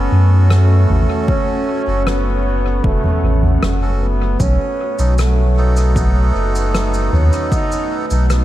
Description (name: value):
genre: ambient dub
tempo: 77 BPM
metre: 4/4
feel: straight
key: F# dorian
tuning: A4 = 440 Hz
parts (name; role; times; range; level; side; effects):
- clear trombone; melody; 0.0-8.4 s; A3 to D#4; -22 LUFS; right 1 dB; dub echo
- deep dark ambient pad; sustained chords; 0.0-8.4 s; A3 to F#5; -24 LUFS; equal; chorus, built-in reverb
- melodica; stabs; 0.0-8.3 s; B3 to A4; -26 LUFS; right 3 dB; dub echo
- warm sub bass; bass; 0.0-8.4 s; E1 to F#2; -14 LUFS; equal; none
- soft-mallet drum kit; drums; 0.5-8.4 s; rim click, shaker, toms; -23 LUFS; equal; dub echo
- electronic kick drum; drums; 1.3-7.7 s; none; -19 LUFS; equal; overdrive
room: light reverb, small room ambience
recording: vinyl crackle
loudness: -13 LUFS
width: side -14 dB against mid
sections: 0.0-8.4 A section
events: none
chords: 0.0 F#m; 4.4 B7